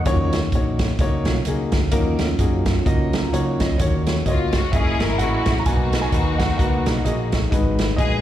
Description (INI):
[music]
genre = uptempo gospel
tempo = 129 BPM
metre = 4/4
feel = swing 58% on 8ths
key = Eb minor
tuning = A4 = 440 Hz
[part]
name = clear upright piano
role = accompaniment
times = 0.0-8.2 s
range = Ab2 to Bb5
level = -25 LUFS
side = left 4 dB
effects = slapback echo
[part]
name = percussive tonewheel organ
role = sustained chords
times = 0.0-3.8 s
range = Gb3 to F4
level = -26 LUFS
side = right 5 dB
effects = slow rotary speaker, chorus vibrato
[part]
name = dark French horn section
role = sustained chords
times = 0.1-8.2 s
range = Gb3 to Gb4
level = -32 LUFS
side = right 1 dB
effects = none
[part]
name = hollow-body short-scale fingered electric bass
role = bass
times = 0.1-8.2 s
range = Gb1 to Gb2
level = -23 LUFS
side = equal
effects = none
[part]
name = swinging big-band drum kit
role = drums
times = 0.1-8.1 s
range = hi-hat, kick drum, snare drum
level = -22 LUFS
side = right 1 dB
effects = none
[part]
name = dark grand piano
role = melody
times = 3.8-8.2 s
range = Db5 to Bb5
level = -29 LUFS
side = right 3 dB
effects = slapback echo
[part]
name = rich symphonic string section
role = melody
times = 4.3-8.2 s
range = Bb3 to Bb4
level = -25 LUFS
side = left 3 dB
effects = slapback echo
[sound]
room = light reverb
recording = live gig heard through the venue's PA, recital hall reverb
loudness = -18 LUFS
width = side -12 dB against mid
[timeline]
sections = 0.1-3.8 A section; 3.8-8.2 B section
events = tonewheel organ solo 0.1-3.8; upright piano fill 2.9-3.8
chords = 0.1 Ebm7; 4.7 Gb13; 5.7 Bmaj7; 7.5 Abm7